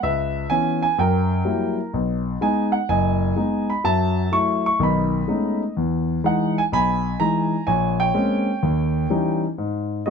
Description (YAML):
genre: solo jazz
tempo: 126 BPM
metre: 4/4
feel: swing 67% on 8ths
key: unclear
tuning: A4 = 438 Hz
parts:
  - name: warm concert grand piano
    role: solo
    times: 0.0-10.1 s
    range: F#1 to C#6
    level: -19 LUFS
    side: equal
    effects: none
room: moderate studio ambience, RT60 0.5 s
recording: close, detailed microphones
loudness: -19 LUFS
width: side -6 dB against mid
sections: 0.0-10.1 A section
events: none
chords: 0.0 C#m7; 1.0 F#7b9; 1.9 B6; 3.8 F#m7; 4.8 B13; 5.8 Emaj7; 7.7 A#m9; 8.6 D#7b9; 9.6 N.C.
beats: | 0.02 0.50 0.98 1.46 | 1.93 2.41 2.89 3.37 | 3.85 4.32 4.80 5.28 | 5.76 6.24 6.71 7.19 | 7.67 8.15 8.63 9.11 | 9.59 10.06